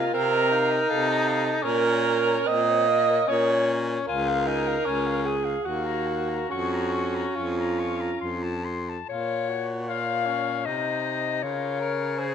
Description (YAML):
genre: classical, lyrical piece for single-reed quartet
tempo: 67-82 BPM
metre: 3/4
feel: rubato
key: Bb minor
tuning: A4 = 440 Hz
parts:
  - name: warm clarinet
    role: melody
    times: 0.0-12.3 s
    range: Bb4 to Db6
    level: -31 LUFS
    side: left 9 dB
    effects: none
  - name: warm alto saxophone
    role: second line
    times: 0.0-12.3 s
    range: F4 to Eb5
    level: -26 LUFS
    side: right 4 dB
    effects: none
  - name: warm tenor saxophone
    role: accompaniment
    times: 0.0-12.3 s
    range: Bb3 to Bb4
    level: -29 LUFS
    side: left 5 dB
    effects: none
  - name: clear baritone saxophone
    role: bass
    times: 0.0-12.3 s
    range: Db2 to Db3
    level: -29 LUFS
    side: equal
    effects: none
room: moderate scoring stage reverb, RT60 1.5 s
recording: none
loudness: -22 LUFS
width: side -8 dB against mid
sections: 0.0-9.1 A section; 9.1-12.3 B section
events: none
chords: 0.0 F7/C; 1.6 Bbm; 4.1 Db; 5.7 Ebm; 6.5 Bbm/F; 9.1 Bbm; 11.4 Bbm/Db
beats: 0.14 0.90 | 1.64 2.48 3.29 | 4.08 4.86 5.66 | 6.50 7.36 8.22 | 9.09 9.88 10.66 | 11.43 12.18